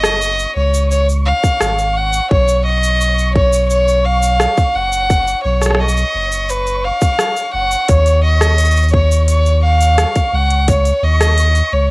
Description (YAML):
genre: folktronica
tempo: 86 BPM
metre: 4/4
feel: straight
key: unclear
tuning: A4 = 444 Hz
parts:
  - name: warm violin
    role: melody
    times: 0.0-11.9 s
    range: B4 to F#5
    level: -15 LUFS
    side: equal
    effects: cassette tape
  - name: warm sub bass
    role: bass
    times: 0.0-11.9 s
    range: F#1 to D#2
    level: -14 LUFS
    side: equal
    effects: none
  - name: organic electronic drum kit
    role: drums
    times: 0.0-11.7 s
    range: hi-hat, rim click, shaker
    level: -20 LUFS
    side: equal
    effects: cassette tape
  - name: flickering grainy texture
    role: texture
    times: 0.0-11.9 s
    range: C#6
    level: -28 LUFS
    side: equal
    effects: built-in reverb
  - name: electronic kick drum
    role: drums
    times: 1.4-10.8 s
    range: none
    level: -14 LUFS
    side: equal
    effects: cassette tape
room: light reverb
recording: home recording on cassette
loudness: -11 LUFS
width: side -24 dB against mid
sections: 0.0-11.9 A section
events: none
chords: 0.0 F#5; 2.3 B; 7.9 C#sus2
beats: 0.21 0.91 1.61 | 2.31 3.01 3.70 4.40 | 5.10 5.80 6.49 7.19 | 7.89 8.59 9.29 9.98 | 10.68 11.38